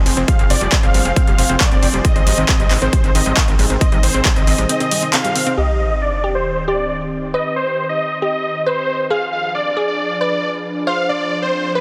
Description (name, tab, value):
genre	uplifting trance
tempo	136 BPM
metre	4/4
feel	straight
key	C harmonic minor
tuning	A4 = 442 Hz
part	lush unison pad	sustained chords	0.0-11.8 s	Eb3 to C5	-28 LUFS	equal	chorus, sidechain pumping
part	analog pluck	arpeggios	0.1-5.5 s	G3 to C4	-26 LUFS	equal	chorus, sidechain pumping, digital delay
part	gritty driven synth bass	bass	0.1-4.7 s	F1 to Ab1	-22 LUFS	equal	sidechain pumping
part	punchy analog drum machine	drums	0.1-5.6 s	handclaps, hi-hat	-22 LUFS	equal	overdrive, sidechain pumping on hats, low-pass filter on hats, low-pass filter on snare, low-pass filter on room
part	supersaw chords	melody	0.3-11.8 s	B4 to F5	-22 LUFS	equal	sidechain pumping, low-pass filter, digital delay
part	electronic kick drum	drums	0.3-4.3 s	none	-18 LUFS	equal	none
part	glassy wavetable pluck	second line	5.6-11.8 s	G4 to C5	-26 LUFS	equal	chorus, digital delay
part	sub drop	sound effects	5.6-7.3 s	none	-25 LUFS	equal	none
room	light reverb, digital ambience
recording	dense, heavily limited modern master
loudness	-17 LUFS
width	mono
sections	0.0-5.6 A section; 5.6-11.8 B section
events	impact 5.6-7.3; filter sweep on supersaw synth 5.6-11.8; filter sweep on analog synth pad 5.6-11.8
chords	0.0 Fm; 2.0 Ab; 5.6 Cm; 9.1 Ddim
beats	| 0.28 0.72 1.16 1.60 | 2.05 2.49 2.93 3.37 | 3.81 4.25 4.69 5.13 | 5.58 6.02 6.46 6.90 | 7.34 7.78 8.22 8.66 | 9.11 9.55 9.99 10.43 | 10.87 11.31 11.75